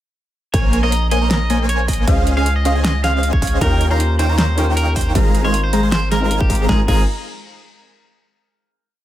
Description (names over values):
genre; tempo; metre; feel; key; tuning
future bass; 156 BPM; 4/4; half-time; Ab major; A4 = 440 Hz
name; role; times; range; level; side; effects
electric guitar at the edge of break-up; melody; 0.5-7.0 s; G4 to F5; -24 LUFS; right 1 dB; sidechain pumping, tape echo
airy dreamy lead; arpeggios; 0.5-7.0 s; F5 to C6; -26 LUFS; equal; chorus, sidechain pumping, tape echo
dense compressed supersaw; riff; 0.5-7.0 s; Ab3 to C6; -21 LUFS; equal; sidechain pumping
long sustained 808-style bass; bass; 0.5-7.1 s; Ab1 to Eb2; -18 LUFS; equal; sidechain pumping
electronic kick drum; drums; 0.5-7.0 s; none; -18 LUFS; equal; none
pop drum kit; drums; 0.5-7.0 s; crash cymbal, hi-hat, snare drum; -23 LUFS; equal; none
dark grand piano; accompaniment; 3.6-7.0 s; C4 to Bb4; -26 LUFS; left 3 dB; sidechain pumping
room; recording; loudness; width
little or no reverb; none; -14 LUFS; side -13 dB against mid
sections
0.5-6.7 drop; 6.7-8.2 final chord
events
drop 0.5-6.7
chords
0.5 Bbm7; 2.1 Dbmaj9; 3.6 Eb7; 5.2 Ab6